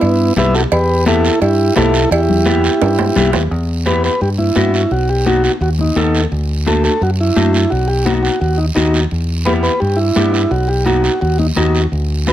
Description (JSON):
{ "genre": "latin, cumbia", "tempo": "171 BPM", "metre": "4/4", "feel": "straight", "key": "E minor", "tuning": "A4 = 445 Hz", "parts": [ { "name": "combo organ", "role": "melody", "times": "0.0-12.3 s", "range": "B3 to E5", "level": "-16 LUFS", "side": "right 1 dB", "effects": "none" }, { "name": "fingered electric bass", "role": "bass", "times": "0.0-12.3 s", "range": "B1 to G2", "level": "-16 LUFS", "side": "equal", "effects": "none" }, { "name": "cowbell and timbales", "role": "percussion", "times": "0.0-3.4 s", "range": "none", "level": "-20 LUFS", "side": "right 6 dB", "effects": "none" }, { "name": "guiro", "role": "percussion", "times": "0.0-12.3 s", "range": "none", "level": "-26 LUFS", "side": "right 6 dB", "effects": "none" }, { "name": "electric guitar through a small old amp", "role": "accompaniment", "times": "0.4-12.3 s", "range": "A3 to A4", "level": "-18 LUFS", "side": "left 2 dB", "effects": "none" }, { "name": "congas", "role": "percussion", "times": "0.4-12.3 s", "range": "none", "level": "-22 LUFS", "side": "left 5 dB", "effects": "none" } ], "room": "little or no reverb", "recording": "close, detailed microphones", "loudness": "-12 LUFS", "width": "side -12 dB against mid", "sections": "0.0-3.5 A section; 3.5-12.3 B section", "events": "drum fill 2.8-3.5", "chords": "0.0 Em; 4.9 B7; 6.3 D; 7.7 B; 9.1 Em; 10.5 B" }